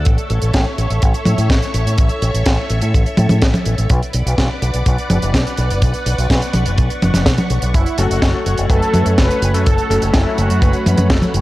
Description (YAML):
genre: italo disco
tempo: 125 BPM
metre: 4/4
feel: straight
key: F# minor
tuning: A4 = 441 Hz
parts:
  - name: string machine, full ensemble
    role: sustained chords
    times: 0.0-11.4 s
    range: A3 to D6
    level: -24 LUFS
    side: equal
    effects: ensemble chorus, vintage 12-bit sampler grit
  - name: fingered electric bass with an envelope filter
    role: bass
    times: 0.0-11.4 s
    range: F#1 to A2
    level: -17 LUFS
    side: equal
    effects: none
  - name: kick drum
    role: drums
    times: 0.1-11.2 s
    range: none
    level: -16 LUFS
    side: equal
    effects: none
  - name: tight funk drum kit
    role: drums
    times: 0.1-11.4 s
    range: hi-hat, snare drum, toms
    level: -19 LUFS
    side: equal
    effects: none
  - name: analog synth brass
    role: melody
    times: 7.7-11.1 s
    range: E4 to B4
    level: -21 LUFS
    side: equal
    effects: chorus, analog delay
  - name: clear electric grand piano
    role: stabs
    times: 8.0-11.3 s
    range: F#3 to B4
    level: -22 LUFS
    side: left 3 dB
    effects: none
room: light reverb, small room reverb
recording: dry, gritty hardware recording, cassette tape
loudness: -13 LUFS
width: side -17 dB against mid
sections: 0.0-11.4 A section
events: none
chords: 0.1 A; 3.9 Bm; 7.7 F#m